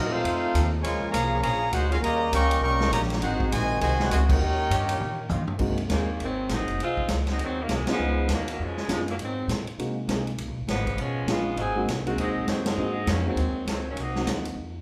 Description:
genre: jazz, big band swing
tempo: 201 BPM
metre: 4/4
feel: swing 61% on 8ths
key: Ab mixolydian from 5.6 s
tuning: A4 = 437 Hz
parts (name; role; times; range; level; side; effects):
- bright trumpet section; melody; 0.0-5.3 s; C4 to Db6; -29 LUFS; equal; plate reverb
- clear trombone section; second line; 0.0-5.3 s; C3 to G4; -31 LUFS; equal; none
- bright trombone section; sustained chords; 0.0-5.4 s; Eb3 to Bb4; -38 LUFS; equal; none
- upright bass; bass; 0.0-14.8 s; Gb1 to C3; -31 LUFS; equal; none
- swinging big-band drum kit; drums; 0.2-14.5 s; crash cymbal, hi-hat, kick drum, ride cymbal, snare drum, toms; -33 LUFS; equal; none
- warm grand piano; accompaniment; 5.6-14.5 s; Gb3 to Ab4; -33 LUFS; equal; none
- clear saxophone section; melody; 5.9-14.3 s; Cb3 to Ab4; -32 LUFS; equal; plate reverb
room: wet large studio reverb, RT60 0.9 s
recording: heard from further back in the room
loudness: -26 LUFS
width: mono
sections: 0.0-5.6 A section; 5.6-14.8 B section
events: band accent 4.3, 7.8, 12.6; drum fill 5.0-5.6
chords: 0.2 F7; 0.8 Bbm7; 2.0 Eb7; 3.2 Ab7; 4.4 Eb7; 5.6 Ab7; 8.0 Db7; 9.2 Ab7; 10.4 Db7; 11.6 Ab7; 14.0 Cm7b5

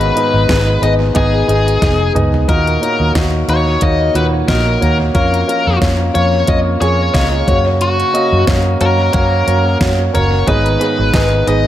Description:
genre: piano-driven pop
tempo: 90 BPM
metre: 4/4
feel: swing 56% on 16ths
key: Eb minor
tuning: A4 = 440 Hz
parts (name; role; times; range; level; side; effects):
- biting lead guitar; melody; 0.0-11.7 s; Gb4 to Eb5; -17 LUFS; left 3 dB; overdrive, tape echo
- warm grand piano; accompaniment; 0.0-11.7 s; Ab2 to Gb5; -16 LUFS; right 1 dB; tape echo
- vintage muted fingered electric bass; bass; 0.0-11.7 s; F1 to Gb2; -16 LUFS; equal; none
- pop drum kit; drums; 0.0-11.6 s; hi-hat, kick drum, snare drum, toms; -18 LUFS; equal; overdrive, tape echo
room: light reverb, digital ambience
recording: echo-heavy mix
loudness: -11 LUFS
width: side -12 dB against mid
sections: 0.0-11.7 A section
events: drum fill 1.8-2.5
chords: 0.0 Abm; 2.5 Ebm; 5.2 Bbm/F; 7.5 Gb; 10.5 Abm

